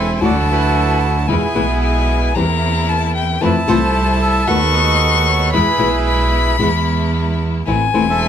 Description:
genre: tango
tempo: 112 BPM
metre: 4/4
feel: rubato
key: unclear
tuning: A4 = 438 Hz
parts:
  - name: bandoneon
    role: melody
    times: 0.0-8.3 s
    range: B3 to F#5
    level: -19 LUFS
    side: right 5 dB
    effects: none
  - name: warm violin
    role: second line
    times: 0.0-8.3 s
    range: G5 to C#6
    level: -19 LUFS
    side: left 7 dB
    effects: none
  - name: rich studio string section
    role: stabs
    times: 0.0-8.3 s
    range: F3 to B4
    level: -25 LUFS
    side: left 2 dB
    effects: none
  - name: clear double bass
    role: bass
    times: 0.0-8.3 s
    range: E1 to F2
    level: -18 LUFS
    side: right 2 dB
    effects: none
  - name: flamenco guitar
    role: accompaniment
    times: 0.2-8.0 s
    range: B2 to F#4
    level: -18 LUFS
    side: left 4 dB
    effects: none
room: light reverb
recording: close, detailed microphones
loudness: -13 LUFS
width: side -9 dB against mid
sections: 0.0-8.3 A section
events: none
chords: 0.2 Dadd9; 1.3 E; 2.4 C7/E; 3.4 Fmaj7; 4.5 B7/D#; 5.5 E; 7.7 Am

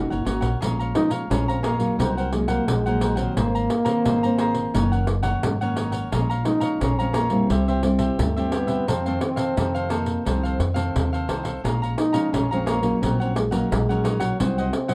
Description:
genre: samba and choro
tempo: 87 BPM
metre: 4/4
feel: straight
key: Bb minor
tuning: A4 = 443 Hz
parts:
  - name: dark trombone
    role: second line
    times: 0.0-14.9 s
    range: Gb3 to Gb4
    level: -28 LUFS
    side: equal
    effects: none
  - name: cavaquinho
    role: accompaniment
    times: 0.0-14.9 s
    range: Eb4 to Bb5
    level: -32 LUFS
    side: equal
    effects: none
  - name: nylon-string guitar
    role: accompaniment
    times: 0.0-14.9 s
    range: F2 to Gb4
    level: -29 LUFS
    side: equal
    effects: none
  - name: upright bass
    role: bass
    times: 0.0-14.7 s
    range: Gb1 to F2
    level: -28 LUFS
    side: equal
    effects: none
  - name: pandeiro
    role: percussion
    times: 0.1-14.9 s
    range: none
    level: -31 LUFS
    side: equal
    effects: none
room: wet small room ambience, RT60 0.5 s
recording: none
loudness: -23 LUFS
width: mono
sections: 0.6-14.9 A section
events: trombone solo 0.6-14.9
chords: 0.0 Ebm7; 0.6 Bbm7; 2.0 Cm7b5; 3.4 Abadd9; 4.7 Ebm7/Gb; 6.1 Bbm7; 7.5 C; 8.9 F7; 11.6 Bbm7; 13.0 Ebm7/Bb; 14.4 Cdim

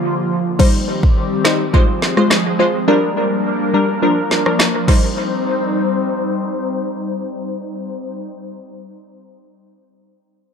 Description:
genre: dancehall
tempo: 105 BPM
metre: 4/4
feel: straight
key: C minor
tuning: A4 = 440 Hz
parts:
  - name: airy breathy pad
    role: sustained chords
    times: 0.0-8.2 s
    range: D3 to C5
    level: -20 LUFS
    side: left 1 dB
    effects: chorus, sidechain pumping, low-pass filter
  - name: wavetable chord stab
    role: accompaniment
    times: 0.6-8.4 s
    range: F3 to C5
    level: -17 LUFS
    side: left 1 dB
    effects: sidechain pumping, low-pass filter, dub echo
  - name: afro-pop drum kit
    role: drums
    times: 0.6-5.0 s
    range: crash cymbal, kick drum, rim click, snare drum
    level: -16 LUFS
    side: equal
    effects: dub echo
room: moderate spring reverb, RT60 1.3 s, digital ambience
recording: echo-heavy mix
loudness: -14 LUFS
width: side -6 dB against mid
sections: 0.6-5.2 A section; 5.2-7.5 B section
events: break 0.0-0.6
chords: 0.0 Bb; 0.6 Cm; 1.7 Fm; 2.9 Gm; 4.0 Bb; 4.9 Cm

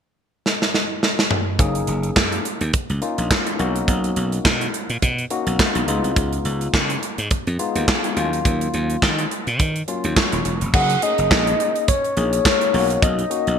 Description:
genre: early-eighties boogie funk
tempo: 105 BPM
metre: 4/4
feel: swing 56% on 16ths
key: F# major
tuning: A4 = 440 Hz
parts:
  - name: modern studio drum kit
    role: drums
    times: 0.5-13.6 s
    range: crash cymbal, handclaps, hi-hat, kick drum, snare drum, toms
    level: -20 LUFS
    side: right 1 dB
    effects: gated reverb
  - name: barky tine electric piano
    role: accompaniment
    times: 1.6-13.6 s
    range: F#3 to C#6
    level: -25 LUFS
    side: left 4 dB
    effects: lush chorus
  - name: slap bass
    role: bass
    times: 1.6-13.6 s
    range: D#1 to D#3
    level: -22 LUFS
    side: equal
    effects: none
  - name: soft octave-layered synth lead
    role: melody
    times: 10.7-13.6 s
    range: C#5 to F#5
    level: -20 LUFS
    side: left 2 dB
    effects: chorus
room: moderate plate reverb, RT60 1.4 s, studio reverb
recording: bright 1980s-style digital production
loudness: -18 LUFS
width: side -7 dB against mid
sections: 0.0-1.6 A section; 1.6-10.7 B section; 10.7-13.6 C section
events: drum fill 0.5-1.6; tine electric piano fill 9.9-10.7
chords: 0.0 N.C.; 1.6 F#6; 3.6 Bmaj7; 5.9 C#9; 8.2 D#m7; 10.7 F#6; 12.7 Bmaj7

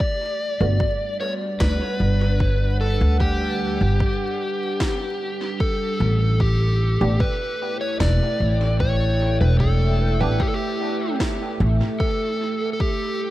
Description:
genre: ambient dub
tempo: 75 BPM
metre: 4/4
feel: straight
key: unclear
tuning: A4 = 440 Hz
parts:
  - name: overdriven slide guitar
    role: melody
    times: 0.0-13.3 s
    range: G4 to D5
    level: -25 LUFS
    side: equal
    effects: dub echo
  - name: deep dark ambient pad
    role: sustained chords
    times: 0.0-13.3 s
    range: G3 to G5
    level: -29 LUFS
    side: right 1 dB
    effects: chorus, built-in reverb
  - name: electronic kick drum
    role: drums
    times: 0.0-13.0 s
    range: none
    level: -24 LUFS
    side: equal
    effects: overdrive
  - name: filtered dub chord stab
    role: stabs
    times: 0.6-0.9, 7.0-10.4 s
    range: A3 to G4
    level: -33 LUFS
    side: right 2 dB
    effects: phaser, dub echo
  - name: upright bass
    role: bass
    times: 0.6-11.8 s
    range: E1 to D2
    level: -19 LUFS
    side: equal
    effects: none
  - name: electronic snare drum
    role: drums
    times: 1.6-11.4 s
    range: none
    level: -33 LUFS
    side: equal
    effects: dub echo
room: light reverb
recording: echo-heavy mix, vinyl crackle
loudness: -19 LUFS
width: side -15 dB against mid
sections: 0.0-13.3 A section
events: none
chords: 0.0 Gmaj7; 6.4 A7sus4; 12.8 G

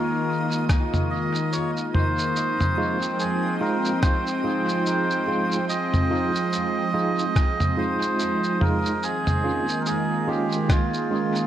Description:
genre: ambient dub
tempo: 72 BPM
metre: 4/4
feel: swing 58% on 16ths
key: F minor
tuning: A4 = 444 Hz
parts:
  - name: melodica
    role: melody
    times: 0.0-11.5 s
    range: F4 to Eb5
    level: -26 LUFS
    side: right 1 dB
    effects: dub echo
  - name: warm analog pad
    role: sustained chords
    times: 0.0-11.5 s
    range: Eb3 to G5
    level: -26 LUFS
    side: right 1 dB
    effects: chorus
  - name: backwards swelling texture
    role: texture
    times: 0.0-11.5 s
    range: Eb4 to Eb5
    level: -36 LUFS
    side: left 1 dB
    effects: built-in reverb
  - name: lo-fi sampler-style drum kit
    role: drums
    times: 0.5-11.5 s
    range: rim click, shaker, toms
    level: -27 LUFS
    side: equal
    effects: dub echo
  - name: electronic kick drum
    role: drums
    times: 0.7-10.9 s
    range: none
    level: -21 LUFS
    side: equal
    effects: none
  - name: overdriven tine electric piano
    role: stabs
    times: 2.8-11.5 s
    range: Ab3 to F4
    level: -29 LUFS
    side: right 2 dB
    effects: fast tremolo, vintage 12-bit sampler grit, dub echo
room: moderate echo chamber reverb, RT60 2.0 s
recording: echo-heavy mix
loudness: -21 LUFS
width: side -11 dB against mid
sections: 0.0-11.5 A section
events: none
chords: 0.0 Ebsus4; 2.4 Fm7; 9.0 Eb9sus4

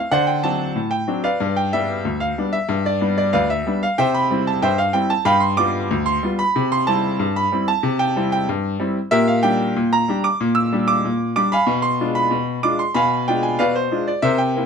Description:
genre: ragtime piano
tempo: 93 BPM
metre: 2/4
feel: straight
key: C major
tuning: A4 = 440 Hz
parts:
  - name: bright grand piano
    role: solo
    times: 0.0-14.7 s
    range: D2 to E6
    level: -17 LUFS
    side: equal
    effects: none
room: light reverb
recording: close, detailed microphones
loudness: -17 LUFS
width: side -6 dB against mid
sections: 0.0-14.7 A section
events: none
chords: 0.1 D7; 1.4 G; 4.0 C; 5.3 G7; 6.5 C; 9.1 Gm/Bb; 11.7 Bdim7

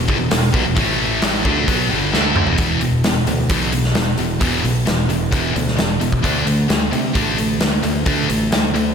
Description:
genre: hard rock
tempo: 132 BPM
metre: 4/4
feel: straight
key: E minor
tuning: A4 = 437 Hz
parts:
  - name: high-gain distorted guitar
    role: riff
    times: 0.0-8.9 s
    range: E2 to D4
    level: -20 LUFS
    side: left 7 dB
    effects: distortion
  - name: sludgy distorted guitar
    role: riff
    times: 0.0-8.9 s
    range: E2 to D4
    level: -22 LUFS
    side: right 8 dB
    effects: overdrive, slapback echo
  - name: picked electric bass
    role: bass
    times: 0.0-8.9 s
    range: E1 to C3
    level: -24 LUFS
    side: right 1 dB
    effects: none
  - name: big rock drum kit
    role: drums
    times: 0.1-8.9 s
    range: hi-hat, kick drum, snare drum, toms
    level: -20 LUFS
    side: equal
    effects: none
room: moderate recital hall reverb, RT60 1.4 s, small room ambience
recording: big arena sound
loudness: -15 LUFS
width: side -7 dB against mid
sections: 0.0-2.6 A section; 2.6-8.9 B section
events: drum fill 2.1-2.6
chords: 0.0 Em; 0.8 A5; 1.5 Em; 2.6 E5; 6.2 D5

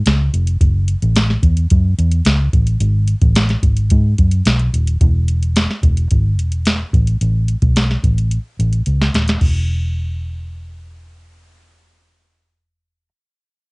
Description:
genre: indie pop, bedroom pop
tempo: 109 BPM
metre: 4/4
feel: straight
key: E major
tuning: A4 = 441 Hz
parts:
  - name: vintage muted fingered electric bass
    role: bass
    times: 0.1-13.1 s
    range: D#1 to G#2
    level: -15 LUFS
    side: equal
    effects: none
  - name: soft vintage rhythm box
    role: drums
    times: 0.1-9.5 s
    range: crash cymbal, hi-hat, kick drum, snare drum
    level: -16 LUFS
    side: equal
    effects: none
room: little or no reverb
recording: home recording on cassette, nothing above 10.7 kHz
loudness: -13 LUFS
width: side -33 dB against mid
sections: 0.0-5.0 A section; 5.0-9.4 B section; 9.4-11.6 C section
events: drum fill 8.3-9.4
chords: none

